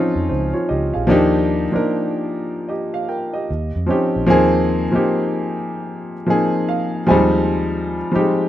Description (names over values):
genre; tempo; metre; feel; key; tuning
R&B; 75 BPM; 4/4; swing 63% on 16ths; Eb major; A4 = 440 Hz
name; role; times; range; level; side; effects
warm grand piano; accompaniment; 0.0-8.5 s; Fb3 to Ab5; -17 LUFS; equal; none
vintage muted fingered electric bass; bass; 0.2-8.2 s; Bb1 to F2; -24 LUFS; right 1 dB; none
room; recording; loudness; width
little or no reverb; rough home demo mix; -16 LUFS; side -12 dB against mid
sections
0.0-1.1 A section; 1.1-8.5 B section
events
grand piano fill 6.3-7.5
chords
0.0 Dbmaj9; 1.1 Ebmaj9; 3.5 Eb13; 4.3 Ab69/Eb; 7.1 Fm9